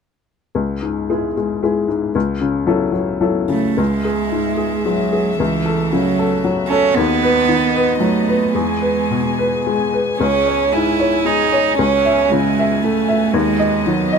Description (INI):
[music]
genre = neoclassical piano and strings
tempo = 105-117 BPM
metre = 3/4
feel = rubato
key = C# minor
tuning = A4 = 442 Hz
[part]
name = clear upright piano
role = accompaniment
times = 0.5-14.2 s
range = C#2 to E5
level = -18 LUFS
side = left 4 dB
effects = none
[part]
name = warm cello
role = second line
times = 3.5-14.2 s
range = E3 to E4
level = -18 LUFS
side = right 8 dB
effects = none
[part]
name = warm chamber string section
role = sustained chords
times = 3.8-14.2 s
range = F#3 to G#5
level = -24 LUFS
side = left 2 dB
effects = none
[sound]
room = light reverb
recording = close, detailed microphones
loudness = -15 LUFS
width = side -6 dB against mid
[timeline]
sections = 0.6-3.8 A section; 3.8-14.2 B section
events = none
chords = 0.6 C#m; 2.1 A6/C#; 3.8 C#m; 5.4 A6/C#; 7.0 B/D#; 8.5 E; 10.2 C#m; 11.8 A6/C#; 13.3 B/D#